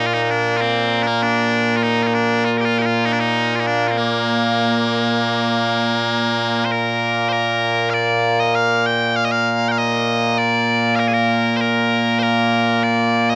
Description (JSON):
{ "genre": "scottish traditional, Scottish pipe music", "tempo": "98 BPM", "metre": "4/4", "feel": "straight", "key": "Bb major", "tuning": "A4 = 440 Hz", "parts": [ { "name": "loud bright bagpipes", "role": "solo", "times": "0.0-13.4 s", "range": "Bb2 to G5", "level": "-18 LUFS", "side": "equal", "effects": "cassette tape" } ], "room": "moderate booth ambience, RT60 0.3 s", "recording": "home recording on cassette", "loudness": "-18 LUFS", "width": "mono", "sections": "0.0-6.7 A section; 6.7-13.4 B section", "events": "none", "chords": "none" }